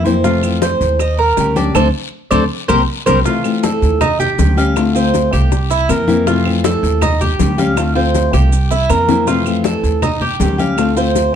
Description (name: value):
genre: latin, Cuban son and guajira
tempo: 160 BPM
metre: 4/4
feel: straight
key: F major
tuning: A4 = 439 Hz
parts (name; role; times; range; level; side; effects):
- nylon-string guitar; accompaniment; 0.0-11.4 s; C3 to G4; -18 LUFS; left 4 dB; none
- Cuban tres; arpeggios; 0.0-11.3 s; D4 to F5; -17 LUFS; right 3 dB; none
- upright bass; bass; 0.0-11.3 s; C2 to F2; -17 LUFS; right 1 dB; none
- congas; percussion; 0.1-11.3 s; none; -23 LUFS; left 2 dB; none
- guiro; percussion; 0.1-11.3 s; none; -31 LUFS; left 7 dB; none
- maracas; percussion; 0.1-11.3 s; none; -33 LUFS; right 8 dB; none
- bongos; percussion; 0.2-11.3 s; none; -23 LUFS; left 8 dB; none
- claves; percussion; 0.4-11.0 s; none; -28 LUFS; right 4 dB; none
room: moderate studio reverb, RT60 0.8 s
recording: dark, warm production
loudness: -12 LUFS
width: side -8 dB against mid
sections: 0.0-3.3 A section; 3.3-11.4 B section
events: band accent 1.8-3.3; drum fill 2.1-3.3, 8.1-9.3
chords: 0.2 Fmaj7; 1.0 Eb7; 1.8 D5; 2.5 C5; 3.3 Fmaj7; 4.0 Eb9; 4.8 Dm7; 5.5 C7; 6.3 Fmaj7; 7.0 Eb9; 7.8 Dm7; 8.5 C7; 9.3 Fmaj7; 10.0 Eb9; 10.8 Dm7